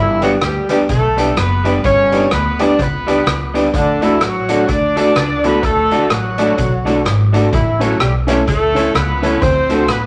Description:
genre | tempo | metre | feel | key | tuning
ska | 126 BPM | 4/4 | swing 60% on 8ths | D major | A4 = 440 Hz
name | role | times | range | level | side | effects
warm horn section | melody | 0.0-10.0 s | D3 to D5 | -19 LUFS | equal | none
electric guitar at the edge of break-up | riff | 0.0-10.1 s | F#2 to D3 | -27 LUFS | equal | none
upright bass | bass | 0.0-10.1 s | F#1 to D2 | -22 LUFS | equal | none
electric guitar at the edge of break-up | accompaniment | 0.2-9.8 s | G3 to A4 | -25 LUFS | equal | none
dark upright piano | stabs | 0.2-9.8 s | C#4 to D5 | -20 LUFS | equal | none
street-band drum kit | drums | 0.2-10.0 s | hi-hat, kick drum, rim click | -24 LUFS | equal | tape echo
room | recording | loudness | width
wet small room reverb, RT60 0.6 s | none | -15 LUFS | mono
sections
0.0-10.1 A section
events
none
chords
0.0 G; 3.7 D; 7.5 A; 9.4 D7

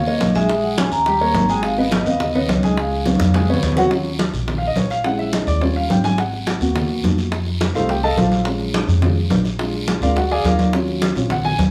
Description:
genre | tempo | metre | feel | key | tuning
Afro-Cuban jazz | 211 BPM | 4/4 | straight | Eb minor from 3.9 s | A4 = 441 Hz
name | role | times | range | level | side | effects
vibraphone with medium hard mallets | melody | 0.0-3.6 s | C#5 to A#5 | -24 LUFS | equal | none
dark grand piano | accompaniment | 0.0-11.6 s | F#3 to A5 | -23 LUFS | equal | none
upright bass | bass | 0.0-11.7 s | G#1 to E#2 | -25 LUFS | equal | none
bongos | percussion | 0.1-11.7 s | none | -31 LUFS | equal | none
congas | percussion | 0.1-11.7 s | none | -24 LUFS | equal | none
guiro | percussion | 0.2-11.7 s | none | -35 LUFS | equal | none
room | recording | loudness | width
moderate large studio reverb, RT60 0.9 s | small room ambience | -18 LUFS | mono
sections
0.0-3.9 A section; 3.9-11.7 B section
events
drum fill 3.1-3.9; grand piano solo 3.9-11.7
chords
0.5 A#m7b5; 1.1 D#7; 1.6 G#m; 2.8 C#7; 3.9 Ebm7; 5.0 Bbm7b5; 5.6 Eb7; 6.2 Abm7; 7.3 F7; 8.5 Bbm7; 9.6 Bb7; 10.7 Ebm7

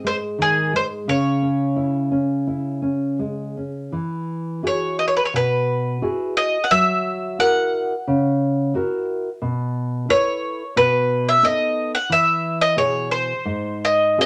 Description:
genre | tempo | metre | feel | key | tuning
fado-style ballad | 88 BPM | 4/4 | rubato | C# harmonic minor, E major from 3.9 s | A4 = 440 Hz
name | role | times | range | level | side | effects
nylon-string guitar | accompaniment | 0.0-14.3 s | G#2 to B4 | -24 LUFS | equal | none
bowl-back mandolin | melody | 0.1-14.3 s | G#4 to F#5 | -21 LUFS | equal | none
room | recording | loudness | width
moderate studio reverb, RT60 0.5 s | none | -21 LUFS | mono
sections
0.0-3.9 A section; 3.9-14.3 B section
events
none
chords
0.0 G#5; 1.1 C#m; 3.9 Eadd9; 6.7 F#7; 9.4 B7sus4; 10.8 B7; 12.1 E; 13.5 G#

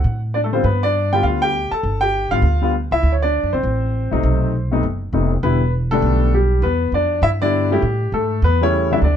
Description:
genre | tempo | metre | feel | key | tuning
jazz | 200 BPM | 4/4 | swing 61% on 8ths | unclear | A4 = 441 Hz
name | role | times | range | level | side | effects
warm grand piano | melody | 0.0-9.2 s | C3 to A5 | -18 LUFS | left 2 dB | none
upright bass | bass | 0.0-9.2 s | E1 to A2 | -19 LUFS | right 1 dB | none
room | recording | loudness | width
little or no reverb | dark, warm production | -16 LUFS | side -9 dB against mid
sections
0.0-9.2 A section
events
none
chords
0.0 D7; 0.6 G7; 3.0 D7(no3); 4.2 B7b9; 5.4 Em7; 7.8 A7

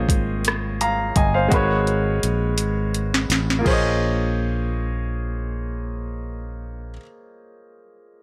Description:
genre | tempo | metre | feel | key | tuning
slow six-eight R&B | 56 BPM (dotted quarters) | 6/8 | straight | Bb minor | A4 = 440 Hz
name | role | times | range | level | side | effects
clear baby grand piano | accompaniment | 0.0-8.2 s | Ab3 to Bb5 | -26 LUFS | equal | none
sustaining fretless electric bass | bass | 0.0-7.0 s | G1 to Bb1 | -26 LUFS | equal | none
smooth R&B drum kit | drums | 0.1-3.8 s | crash cymbal, hi-hat, kick drum, rim click, snare drum | -24 LUFS | equal | overdrive
room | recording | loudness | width
light reverb, digital ambience | none | -22 LUFS | mono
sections
0.0-3.7 A section; 3.7-7.9 B section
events
drum fill 2.6-3.7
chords
0.0 Bbm11; 1.5 Abm11; 3.7 Bbm11

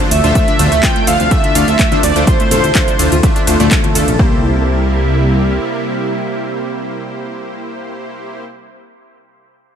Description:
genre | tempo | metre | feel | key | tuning
progressive house | 125 BPM | 4/4 | straight | C mixolydian | A4 = 440 Hz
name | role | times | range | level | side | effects
lush unison pad | sustained chords | 0.0-8.4 s | C3 to E4 | -21 LUFS | right 2 dB | chorus, sidechain pumping
analog pluck | arpeggios | 0.0-4.4 s | A3 to A4 | -20 LUFS | equal | chorus, sidechain pumping, dub echo
supersaw stab | stabs | 0.0-8.4 s | D3 to E5 | -21 LUFS | equal | sidechain pumping, dub echo
house drum kit | drums | 0.0-4.2 s | handclaps, hi-hat, ride cymbal, shaker | -20 LUFS | equal | overdrive
congas | percussion | 0.0-4.2 s | none | -24 LUFS | left 3 dB | none
twinkling granular texture | texture | 0.0-4.2 s | A4 to A5 | -28 LUFS | left 1 dB | built-in reverb, sidechain pumping
wide unison lead | melody | 0.1-3.7 s | C5 to G5 | -17 LUFS | right 2 dB | analog chorus, cassette tape, ping-pong delay
dark detuned saw bass | bass | 0.1-5.6 s | A1 to D2 | -15 LUFS | equal | tube saturation, sidechain pumping
electronic kick drum | drums | 0.4-4.3 s | none | -14 LUFS | equal | overdrive
room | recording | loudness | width
light reverb, digital ambience | none | -11 LUFS | side -8 dB against mid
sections
0.0-4.2 A section; 4.2-8.0 B section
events
drop 0.0-4.2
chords
0.0 Dm7; 4.2 C7

